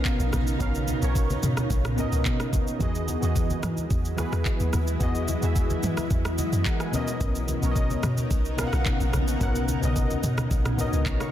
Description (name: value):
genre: amapiano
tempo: 109 BPM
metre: 4/4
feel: straight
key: unclear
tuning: A4 = 440 Hz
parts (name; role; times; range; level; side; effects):
- warm analog keys; accompaniment; 0.0-11.3 s; B2 to C#6; -29 LUFS; equal; chorus
- granular cloud pad; sustained chords; 0.0-11.3 s; C#3 to A#4; -32 LUFS; left 1 dB; built-in reverb, sidechain pumping
- deep log drum bass; bass; 0.0-11.2 s; A#1 to E3; -27 LUFS; equal; none
- smooth R&B drum kit; drums; 0.0-11.3 s; handclaps, kick drum, rim click, shaker, toms; -28 LUFS; equal; none
- congas; percussion; 0.3-10.9 s; none; -33 LUFS; left 1 dB; none
room: little or no reverb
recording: dense, heavily limited modern master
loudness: -23 LUFS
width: side -12 dB against mid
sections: 0.0-11.3 A section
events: none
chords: 0.0 Bmaj9; 2.8 Emaj9; 6.9 Bmaj9